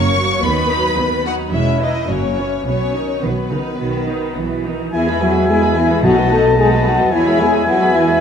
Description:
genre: quick classical-period movement for symphony orchestra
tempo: 109 BPM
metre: 4/4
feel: straight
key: B major, E major from 4.9 s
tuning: A4 = 443 Hz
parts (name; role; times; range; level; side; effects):
- rich chamber violin section; melody; 0.0-8.2 s; B4 to C#6; -23 LUFS; left 3 dB; none
- dark chamber violin section; second line; 0.0-8.2 s; B3 to B5; -24 LUFS; left 5 dB; none
- rich chamber viola section; accompaniment; 0.0-8.2 s; D#3 to G#4; -21 LUFS; right 1 dB; none
- rich symphonic cello section; bass; 0.0-8.2 s; D#2 to A3; -23 LUFS; right 3 dB; none
- warm chamber double bass section; bass; 0.0-8.2 s; E1 to E2; -22 LUFS; right 3 dB; none
- clear oboe; second line; 4.9-8.2 s; G#5 to A5; -22 LUFS; equal; none
- mellow hollow flute section; second line; 4.9-8.2 s; E5 to A5; -21 LUFS; left 2 dB; none
- warm clarinet; second line; 4.9-8.2 s; D#5 to E5; -23 LUFS; left 2 dB; none
- mellow French horn section; sustained chords; 4.9-8.2 s; E4 to A4; -16 LUFS; left 3 dB; none
- timpani; percussion; 6.0-6.8 s; B2; -23 LUFS; left 2 dB; none
room: wet scoring stage reverb, RT60 1.8 s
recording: none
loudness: -14 LUFS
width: side -7 dB against mid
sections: 0.0-4.9 A section; 4.9-8.2 B section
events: none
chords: 0.4 B/D#; 1.5 C#m/E; 2.1 F#7; 2.7 B; 4.9 E; 6.0 B7; 7.1 E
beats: | 0.44 0.98 1.53 2.09 | 2.66 3.23 3.80 4.37 | 4.93 5.49 6.04 6.58 | 7.13 7.67

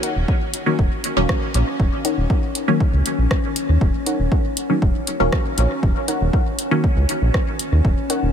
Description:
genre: dub techno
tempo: 119 BPM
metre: 4/4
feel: straight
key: Eb minor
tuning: A4 = 440 Hz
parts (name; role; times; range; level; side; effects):
- warbly dusty pluck; riff; 0.0-8.2 s; Eb4 to Gb5; -30 LUFS; left 2 dB; chorus, sidechain pumping, dub echo
- deep house drum kit; drums; 0.0-8.2 s; hi-hat, rim click; -27 LUFS; equal; dub echo
- metallic inharmonic drone; texture; 1.0-8.3 s; Db4; -28 LUFS; left 2 dB; chorus, built-in reverb, sidechain pumping
- round analog bass; bass; 0.2-8.3 s; Eb1 to Eb2; -18 LUFS; equal; sidechain pumping
- electronic kick drum; drums; 0.3-7.9 s; none; -19 LUFS; equal; none
- filtered dub chord stab; stabs; 0.7-6.9 s; Eb3 to Db4; -23 LUFS; equal; chorus, phaser, sidechain pumping, dub echo
room: light reverb, digital ambience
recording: none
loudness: -17 LUFS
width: side -8 dB against mid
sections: 0.0-8.3 A section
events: none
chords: 0.0 Ebm7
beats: 0.28 0.79 1.29 | 1.80 2.30 2.80 3.31 | 3.81 4.32 4.82 5.33 | 5.83 6.33 6.84 7.34 | 7.85

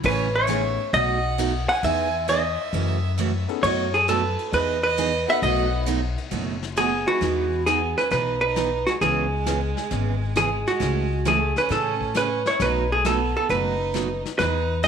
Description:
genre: country, western swing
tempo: 134 BPM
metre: 4/4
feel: swing 68% on 8ths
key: E major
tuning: A4 = 440 Hz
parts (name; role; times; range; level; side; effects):
- picked steel-string acoustic guitar; accompaniment; 0.0-14.9 s; B2 to G#4; -29 LUFS; right 9 dB; none
- upright bass; bass; 0.0-14.9 s; F#1 to A2; -27 LUFS; left 2 dB; none
- vintage brush drum kit; drums; 0.0-14.9 s; brushed snare drum, crash cymbal, hi-hat, kick drum, ride cymbal, snare drum; -35 LUFS; left 10 dB; none
- vintage hollow-body jazz guitar; melody; 0.1-14.9 s; F#4 to F#5; -22 LUFS; right 1 dB; none
- clear fiddle; second line; 0.1-14.9 s; G#3 to G#5; -31 LUFS; right 8 dB; tape echo
- dark upright piano; accompaniment; 0.5-0.8, 3.5-7.6 s; A3 to B4; -31 LUFS; left 14 dB; none
room: moderate echo chamber reverb, RT60 1.5 s, small room ambience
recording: 1960s-style stereo with parts hard left and right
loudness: -20 LUFS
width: side -7 dB against mid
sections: 0.0-7.2 A section; 7.2-14.9 B section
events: none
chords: 0.0 Amaj9#11; 0.9 B7; 1.8 Emaj7; 2.7 F#m7; 3.6 B7/F#; 4.5 Emaj7; 5.4 B7; 7.2 Emaj7; 9.0 C#m7; 10.8 Amaj7/C#; 12.6 B7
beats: | 0.04 0.49 0.94 1.39 | 1.84 2.28 2.73 3.18 | 3.63 4.08 4.52 4.97 | 5.42 5.87 6.32 6.76 | 7.21 7.66 8.11 8.56 | 9.01 9.46 9.91 10.36 | 10.81 11.26 11.71 12.15 | 12.60 13.05 13.50 13.95 | 14.40 14.85

